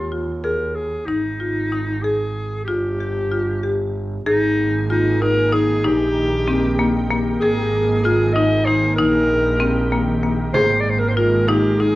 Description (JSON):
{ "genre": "contemporary instrumental, chamber music in an uneven meter", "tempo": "190 BPM (eighths)", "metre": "5/8", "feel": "straight", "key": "unclear", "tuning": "A4 = 444 Hz", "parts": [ { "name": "bright clarinet", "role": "melody", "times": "0.0-12.0 s", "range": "Eb4 to Eb5", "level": "-21 LUFS", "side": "left 1 dB", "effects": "none" }, { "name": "marimba with hard mallets", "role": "arpeggios", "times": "0.0-12.0 s", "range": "Bb3 to Ab4", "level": "-21 LUFS", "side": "left 2 dB", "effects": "none" }, { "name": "clear double bass", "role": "bass", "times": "0.0-12.0 s", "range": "G1 to Eb2", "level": "-23 LUFS", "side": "right 2 dB", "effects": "none" }, { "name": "soft additive organ-like pad", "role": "sustained chords", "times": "4.6-12.0 s", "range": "Eb3 to Ab4", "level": "-25 LUFS", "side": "right 1 dB", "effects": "ensemble chorus, built-in reverb" }, { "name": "frame drum", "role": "percussion", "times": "10.5-12.0 s", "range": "none", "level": "-28 LUFS", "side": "right 3 dB", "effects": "none" } ], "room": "moderate recital hall reverb, RT60 1.3 s", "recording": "worn, warbling old tape, cassette tape, warbly pitch drift", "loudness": "-16 LUFS", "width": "side -17 dB against mid", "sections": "0.0-4.3 A section; 4.3-12.0 B section", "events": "none", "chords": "0.0 Ebsus2; 1.1 Ab5; 2.7 Fsus2/G; 4.3 Absus2; 5.8 Eb/Bb; 7.4 Absus2; 9.0 Eb/Bb; 10.6 Absus2" }